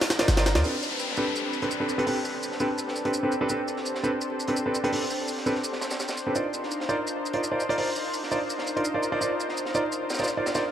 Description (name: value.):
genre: drum and bass, jungle.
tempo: 168 BPM.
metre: 4/4.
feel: straight.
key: unclear.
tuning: A4 = 440 Hz.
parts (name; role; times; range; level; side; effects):
lush unison pad; sustained chords; 0.0-10.7 s; C4 to C5; -31 LUFS; left 1 dB; chorus, vintage 12-bit sampler grit.
crunchy breakbeat drum kit; drums; 0.0-10.6 s; hi-hat, shaker, snare drum; -34 LUFS; right 1 dB; high-pass filter on hats, high-pass filter on snare, high-pass filter on perc, high-pass filter on room.
jungle sampler-style drum kit; drums; 0.0-0.6 s; hi-hat, ride cymbal, snare drum; -25 LUFS; equal; none.
clear concert grand piano; stabs; 0.2-10.6 s; C4 to D5; -28 LUFS; right 1 dB; low-pass filter, dub echo.
warm 808-style bass; bass; 0.3-0.6 s; G1 to Eb2; -23 LUFS; equal; none.
downlifter; sound effects; 0.6-3.5 s; none; -34 LUFS; left 4 dB; none.
room: moderate echo chamber reverb, RT60 2.0 s.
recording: vinyl crackle.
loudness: -25 LUFS.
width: side -10 dB against mid.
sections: 0.6-10.7 A section.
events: none.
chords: 0.0 Cm11; 0.6 Am11; 6.4 Cm11.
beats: 0.28 | 0.64 1.00 1.35 1.71 | 2.07 2.43 2.78 3.14 | 3.50 3.85 4.21 4.57 | 4.93 5.28 5.64 6.00 | 6.35 6.71 7.07 7.43 | 7.78 8.14 8.50 8.85 | 9.21 9.57 9.93 10.28 | 10.64.